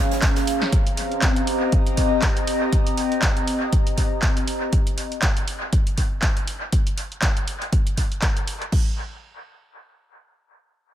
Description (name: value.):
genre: acid house.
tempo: 120 BPM.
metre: 4/4.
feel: swing 57% on 16ths.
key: C phrygian.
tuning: A4 = 436 Hz.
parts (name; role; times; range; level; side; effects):
warbly tape-like pad; sustained chords; 0.0-0.7 s; F3 to Ab4; -40 LUFS; right 3 dB; none.
airy breathy pad; texture; 0.0-4.7 s; C4 to Bb5; -24 LUFS; left 1 dB; chorus, phaser, sidechain pumping.
huge arena drum kit; drums; 0.1-0.6 s; hi-hat, snare drum; -36 LUFS; right 2 dB; high-pass filter on hats, high-pass filter on snare, high-pass filter on room, dub echo.
punchy analog drum machine; drums; 0.2-8.9 s; crash cymbal, kick drum; -21 LUFS; equal; none.
punchy analog drum machine; drums; 0.2-8.7 s; handclaps, hi-hat, snare drum; -27 LUFS; right 1 dB; dub echo.
room: light reverb.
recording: echo-heavy mix.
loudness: -19 LUFS.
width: side -12 dB against mid.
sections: 0.0-8.7 A section; 8.7-10.9 B section.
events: none.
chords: 0.0 Bbm7; 0.7 Cm7; 4.7 N.C..